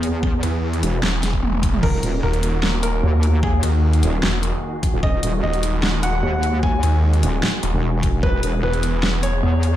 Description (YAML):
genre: heavy wobble dubstep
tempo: 150 BPM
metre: 4/4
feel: half-time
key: Eb phrygian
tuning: A4 = 438 Hz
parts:
  - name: supersaw chords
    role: sustained chords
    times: 0.0-9.8 s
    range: Eb3 to G#4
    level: -28 LUFS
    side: equal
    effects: sidechain pumping, low-pass filter
  - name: wobble bass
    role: bass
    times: 0.0-9.8 s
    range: Eb1 to E2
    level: -19 LUFS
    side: equal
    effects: chorus, overdrive
  - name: dubstep drum kit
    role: drums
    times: 0.0-9.7 s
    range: crash cymbal, hi-hat, snare drum, toms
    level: -24 LUFS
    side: equal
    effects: overdrive, small room ambience
  - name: electronic kick drum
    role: drums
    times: 0.2-8.3 s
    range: none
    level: -20 LUFS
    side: equal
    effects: overdrive, small room ambience
  - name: snarling distorted saw bass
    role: bass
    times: 0.4-9.4 s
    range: Eb1 to E2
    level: -20 LUFS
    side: equal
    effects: distortion, overdrive
  - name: warm grand piano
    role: melody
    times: 1.8-9.8 s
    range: Ab4 to Ab5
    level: -27 LUFS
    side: equal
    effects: ping-pong delay
room: digital ambience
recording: played on a big sound system in a bare room, large studio reverb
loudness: -17 LUFS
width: side -12 dB against mid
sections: 0.0-9.8 A section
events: drum fill 1.2-1.8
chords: 0.0 E; 1.8 Ebm; 8.2 E